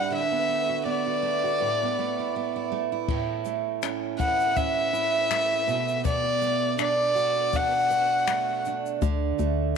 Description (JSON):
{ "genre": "acoustic pop", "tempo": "81 BPM", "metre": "4/4", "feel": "swing 55% on 16ths", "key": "unclear", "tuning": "A4 = 440 Hz", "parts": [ { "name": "warm violin", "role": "melody", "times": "0.0-8.7 s", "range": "D5 to F#5", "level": "-24 LUFS", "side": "left 2 dB", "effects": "none" }, { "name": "picked steel-string acoustic guitar", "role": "accompaniment", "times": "0.0-9.8 s", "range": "A2 to F#4", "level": "-28 LUFS", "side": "right 10 dB", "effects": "none" }, { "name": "compact cocktail drum kit", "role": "drums", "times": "3.1-9.6 s", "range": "crash cymbal, finger snaps, kick drum, shaker", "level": "-31 LUFS", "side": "left 6 dB", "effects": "none" }, { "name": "organ-like FM bass", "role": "bass", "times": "9.0-9.8 s", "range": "D2", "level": "-25 LUFS", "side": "left 2 dB", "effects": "none" } ], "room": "moderate plate reverb, RT60 2.5 s", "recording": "1960s-style stereo with parts hard left and right", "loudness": "-23 LUFS", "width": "side -6 dB against mid", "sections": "0.0-3.1 A section; 3.1-9.8 B section", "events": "none", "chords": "0.1 D6; 1.6 Asus2; 3.1 A; 5.7 Bm7; 9.0 D" }